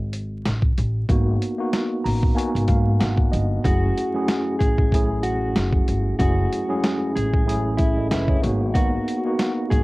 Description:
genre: hip hop, boom-bap hip-hop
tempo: 94 BPM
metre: 4/4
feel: swing 56% on 16ths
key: F# dorian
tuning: A4 = 439 Hz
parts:
  - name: upright bass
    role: bass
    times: 0.0-9.8 s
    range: F#1 to G#2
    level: -23 LUFS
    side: equal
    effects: none
  - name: boom bap sampler-style drum kit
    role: drums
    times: 0.1-9.8 s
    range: hi-hat, kick drum, snare drum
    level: -21 LUFS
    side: equal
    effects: cassette tape
  - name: mellow tine electric piano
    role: accompaniment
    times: 1.1-9.8 s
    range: F#2 to A#5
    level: -24 LUFS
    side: equal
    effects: medium stereo tremolo, cassette tape, high-pass filter, low-pass filter
  - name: mellow electric guitar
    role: melody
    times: 3.6-9.8 s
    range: E4 to G#4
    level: -27 LUFS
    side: equal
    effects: high-pass filter, low-pass filter, cassette tape, tape echo
room: little or no reverb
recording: home recording on cassette, vinyl crackle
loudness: -19 LUFS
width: side -21 dB against mid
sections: 0.0-9.8 A section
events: break 0.0-3.6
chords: 0.0 G#m9; 3.6 F#m9; 8.4 G#m9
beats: 0.45 | 1.09 1.73 2.37 3.01 | 3.64 4.28 4.92 5.56 | 6.20 6.83 7.47 8.11 | 8.75 9.39

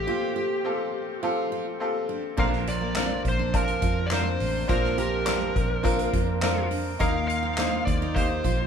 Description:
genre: piano-driven pop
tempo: 104 BPM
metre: 4/4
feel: straight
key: unclear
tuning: A4 = 440 Hz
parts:
  - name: smooth overdriven lead guitar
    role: melody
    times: 0.0-8.7 s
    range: G4 to F5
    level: -30 LUFS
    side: equal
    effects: none
  - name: bright upright piano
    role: accompaniment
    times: 0.0-8.7 s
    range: Bb2 to A5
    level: -28 LUFS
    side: left 2 dB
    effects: none
  - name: dark symphonic string section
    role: sustained chords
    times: 0.0-8.7 s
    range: C3 to G4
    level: -39 LUFS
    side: left 3 dB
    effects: none
  - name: vintage muted fingered electric bass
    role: bass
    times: 0.0-8.7 s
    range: A1 to F2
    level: -30 LUFS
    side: right 1 dB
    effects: none
  - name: picked steel-string acoustic guitar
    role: riff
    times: 0.1-8.6 s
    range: Bb3 to G4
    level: -33 LUFS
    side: right 6 dB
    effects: none
  - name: soft-mallet drum kit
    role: drums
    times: 2.4-8.6 s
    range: crash cymbal, handclaps, hi-hat, kick drum, snare drum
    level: -28 LUFS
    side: equal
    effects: none
room: moderate large studio reverb, RT60 1.1 s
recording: band playing live in one room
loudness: -23 LUFS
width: side -7 dB against mid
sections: 0.0-2.4 A section; 2.4-8.7 B section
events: break 0.1-2.4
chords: 0.0 Fadd9; 7.0 Ebsus2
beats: | 0.07 0.65 1.23 1.80 | 2.38 2.96 3.54 4.12 | 4.69 5.27 5.85 6.42 | 7.00 7.58 8.16

